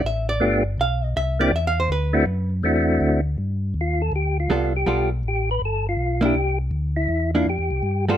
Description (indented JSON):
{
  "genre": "jazz",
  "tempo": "162 BPM",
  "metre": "4/4",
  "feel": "swing 66% on 8ths",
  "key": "G mixolydian",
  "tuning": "A4 = 438 Hz",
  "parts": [
    { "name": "vintage hollow-body jazz guitar", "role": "accompaniment", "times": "0.0-8.2 s", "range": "G3 to F5", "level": "-23 LUFS", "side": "right 2 dB", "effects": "none" },
    { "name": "mellow tonewheel organ", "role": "bass", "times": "0.0-8.2 s", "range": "G1 to G2", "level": "-23 LUFS", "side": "left 1 dB", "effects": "chorus vibrato, slow rotary speaker" },
    { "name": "percussive tonewheel organ", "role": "melody", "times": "0.4-8.2 s", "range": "A3 to B4", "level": "-22 LUFS", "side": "equal", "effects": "slow rotary speaker" }
  ],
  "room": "little or no reverb",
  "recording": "close, detailed microphones",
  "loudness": "-20 LUFS",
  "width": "side -10 dB against mid",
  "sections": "0.0-3.4 A section; 3.4-8.2 A section",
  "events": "hollow-body jazz guitar solo 0.0-3.4; tonewheel organ solo 3.4-8.2",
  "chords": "0.4 G9; 1.2 C9; 1.9 D9; 3.4 G9; 6.3 Cadd9"
}